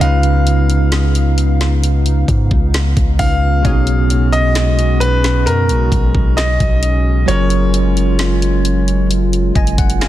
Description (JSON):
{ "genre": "contemporary R&B", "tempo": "66 BPM", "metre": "4/4", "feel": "straight", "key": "G# dorian", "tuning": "A4 = 441 Hz", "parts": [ { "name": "bright grand piano", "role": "melody", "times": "0.0-9.1 s", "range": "A#4 to E#5", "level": "-20 LUFS", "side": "left 1 dB", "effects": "ping-pong delay" }, { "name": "bell-like tine electric piano", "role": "accompaniment", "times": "0.0-10.1 s", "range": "B2 to G#5", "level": "-19 LUFS", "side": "right 1 dB", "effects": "medium stereo tremolo" }, { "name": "hollow soft pad", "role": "sustained chords", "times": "0.0-10.1 s", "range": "C#3 to E#5", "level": "-23 LUFS", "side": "right 1 dB", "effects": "chorus, sidechain pumping" }, { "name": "long sustained 808-style bass", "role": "bass", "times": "0.0-10.1 s", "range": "F#1 to G#2", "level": "-15 LUFS", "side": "equal", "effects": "none" }, { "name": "smooth R&B drum kit", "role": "drums", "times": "0.0-10.1 s", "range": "hi-hat, kick drum, snare drum", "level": "-17 LUFS", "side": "equal", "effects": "none" }, { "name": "glassy wavetable pluck", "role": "texture", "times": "0.0-10.1 s", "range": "G#4 to E#5", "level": "-34 LUFS", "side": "left 3 dB", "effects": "none" } ], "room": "digital ambience", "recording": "dense, heavily limited modern master", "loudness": "-12 LUFS", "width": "side -13 dB against mid", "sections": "0.0-10.1 A section", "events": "tine electric piano fill 9.1-10.1", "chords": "0.0 C#9; 3.6 G#m11/B; 7.3 F#maj9" }